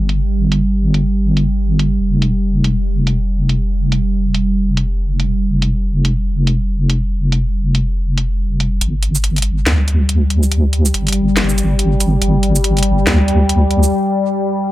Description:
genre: deep dubstep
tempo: 141 BPM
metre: 4/4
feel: swing 59% on 16ths, half-time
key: unclear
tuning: A4 = 441 Hz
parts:
  - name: deep dark ambient pad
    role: sustained chords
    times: 0.0-14.7 s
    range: G3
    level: -20 LUFS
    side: right 1 dB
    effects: chorus, built-in reverb
  - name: deep soft wobble bass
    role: bass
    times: 0.0-13.9 s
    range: F1 to D2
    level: -14 LUFS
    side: equal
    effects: chorus
  - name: garage drum kit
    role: drums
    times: 0.1-13.9 s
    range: hi-hat, shaker, snare drum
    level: -19 LUFS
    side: right 1 dB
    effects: low-pass filter on hats, low-pass filter on perc, low-pass filter on snare, low-pass filter on room
room: little or no reverb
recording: echo-heavy mix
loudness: -13 LUFS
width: side -16 dB against mid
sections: 0.0-8.8 A section; 8.8-14.7 B section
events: filter sweep on ambient pad 0.0-8.8; build-up 8.8-14.7; break 13.9-14.7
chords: 0.0 N.C.; 2.0 Fsus2; 8.8 G5

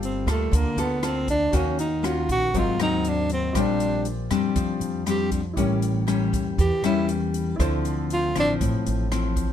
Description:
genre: bossa nova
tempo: 119 BPM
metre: 4/4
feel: straight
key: D minor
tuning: A4 = 441 Hz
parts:
  - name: breathy tenor saxophone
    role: melody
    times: 0.0-8.5 s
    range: A3 to G4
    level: -25 LUFS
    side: right 1 dB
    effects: none
  - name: clear grand piano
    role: accompaniment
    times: 0.0-9.5 s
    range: E4 to F5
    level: -36 LUFS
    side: right 5 dB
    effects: none
  - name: nylon-string guitar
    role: accompaniment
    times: 0.0-9.5 s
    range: G#2 to A4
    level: -25 LUFS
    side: left 6 dB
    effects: none
  - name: upright bass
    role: bass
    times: 0.0-9.5 s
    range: G1 to F2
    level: -27 LUFS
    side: right 1 dB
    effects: none
  - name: swinging big-band drum kit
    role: drums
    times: 0.0-9.5 s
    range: hi-hat, kick drum, rim click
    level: -32 LUFS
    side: equal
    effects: none
room: little or no reverb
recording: close, detailed microphones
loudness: -21 LUFS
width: side -10 dB against mid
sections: 0.0-9.5 A section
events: tenor saxophone solo 0.0-9.5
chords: 0.0 Gm9; 1.5 Ebm7; 2.5 G#9; 3.5 Bb69; 5.6 A7b9; 7.6 Dm9

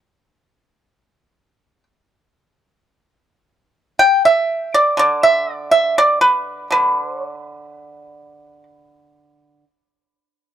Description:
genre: chinese traditional, Chinese solo plucked strings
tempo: free time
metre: none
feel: none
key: G gong mode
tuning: A4 = 440 Hz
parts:
  - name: pipa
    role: solo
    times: 0.0-9.6 s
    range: D3 to G5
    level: -13 LUFS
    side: right 1 dB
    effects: none
room: studio ambience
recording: dry, close 1970s-style studio recording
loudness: -13 LUFS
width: side -10 dB against mid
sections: 0.0-2.9 A section; 2.9-10.5 B section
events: none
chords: none

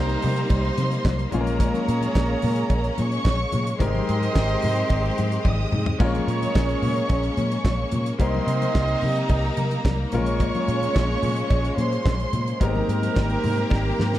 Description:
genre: disco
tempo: 109 BPM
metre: 4/4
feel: straight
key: Bb dorian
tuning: A4 = 443 Hz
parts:
  - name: warm studio violin section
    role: second line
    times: 0.0-14.2 s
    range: Bb4 to Eb6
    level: -30 LUFS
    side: right 1 dB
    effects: none
  - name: clear grand piano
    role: accompaniment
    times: 0.0-14.2 s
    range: G3 to Bb4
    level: -30 LUFS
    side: left 4 dB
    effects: none
  - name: clear symphonic string section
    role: sustained chords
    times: 0.0-14.2 s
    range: C3 to G4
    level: -30 LUFS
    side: left 2 dB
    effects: none
  - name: clear horn section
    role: stabs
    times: 0.0-14.2 s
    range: G3 to Eb5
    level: -29 LUFS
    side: right 4 dB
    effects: none
  - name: vintage muted fingered electric bass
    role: bass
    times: 0.0-14.2 s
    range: Ab1 to C3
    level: -25 LUFS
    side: equal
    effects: none
  - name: damped 70s drum kit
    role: drums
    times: 0.1-14.2 s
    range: crash cymbal, handclaps, hi-hat, kick drum, snare drum, toms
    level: -24 LUFS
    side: equal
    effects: none
  - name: congas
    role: percussion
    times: 0.1-14.1 s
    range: none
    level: -33 LUFS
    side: left 5 dB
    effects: none
  - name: cowbell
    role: percussion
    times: 0.5-13.8 s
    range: none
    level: -40 LUFS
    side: right 6 dB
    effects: none
room: small room reverb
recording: dark, warm production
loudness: -20 LUFS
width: side -13 dB against mid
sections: 0.0-14.2 A section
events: drum fill 5.4-6.0, 13.7-14.2; grand piano fill 14.0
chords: 0.0 Cm7; 1.3 Bbm7; 3.8 Abmaj9; 6.0 Bbm7; 8.2 Cm7; 10.1 Bbm7; 12.6 Abmaj9

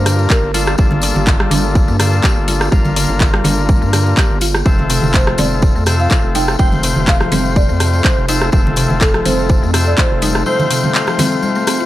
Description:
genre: afro house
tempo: 124 BPM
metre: 4/4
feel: swing 54% on 16ths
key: unclear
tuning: A4 = 437 Hz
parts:
  - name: marimba with soft mallets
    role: melody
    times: 0.0-0.6, 5.1-11.9 s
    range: A4 to G5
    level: -22 LUFS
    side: right 1 dB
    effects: tape echo
  - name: warm analog pad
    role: sustained chords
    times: 0.0-11.9 s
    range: C3 to A4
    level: -28 LUFS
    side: right 1 dB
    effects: none
  - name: mallet-like synth pluck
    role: arpeggios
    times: 0.0-11.9 s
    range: C3 to G4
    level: -23 LUFS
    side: right 2 dB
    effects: chorus, sidechain pumping, tape echo
  - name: overdriven tonewheel organ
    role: stabs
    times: 0.0-11.9 s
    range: A3 to C5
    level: -20 LUFS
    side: left 4 dB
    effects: sidechain pumping, tape echo
  - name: round analog bass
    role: bass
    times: 0.0-10.4 s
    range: F1 to G2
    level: -18 LUFS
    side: equal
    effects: sidechain pumping
  - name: house drum kit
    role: drums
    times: 0.1-11.8 s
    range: handclaps, hi-hat, rim click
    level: -19 LUFS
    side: equal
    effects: none
  - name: tambourine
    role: percussion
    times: 0.1-11.9 s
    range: none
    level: -26 LUFS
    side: left 3 dB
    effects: none
  - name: congas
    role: percussion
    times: 0.2-11.9 s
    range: none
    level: -22 LUFS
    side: equal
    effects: none
  - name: electronic kick drum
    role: drums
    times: 0.3-10.1 s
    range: none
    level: -13 LUFS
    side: equal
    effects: none
room: little or no reverb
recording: dry, gritty hardware recording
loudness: -11 LUFS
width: side -14 dB against mid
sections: 0.0-11.9 A section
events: none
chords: 0.0 Gm7; 4.7 F

